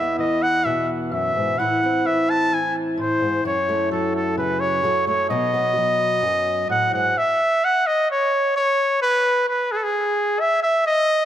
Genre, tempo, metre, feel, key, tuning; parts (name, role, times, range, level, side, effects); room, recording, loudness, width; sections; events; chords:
folk; 129 BPM; 4/4; straight; A4 = 438 Hz
warm trumpet; melody; 0.0-11.3 s; G#4 to A5; -19 LUFS; equal; tape echo
fingerpicked steel-string acoustic guitar; accompaniment; 0.0-7.2 s; E2 to A4; -24 LUFS; left 1 dB; tape echo
moderate spring reverb, RT60 1.7 s; echo-heavy mix; -18 LUFS; side -11 dB against mid
0.0-7.2 A section; 7.2-11.3 B section
0.0 Eadd9; 1.6 Am; 3.4 F#m7; 5.3 B; 7.2 N.C.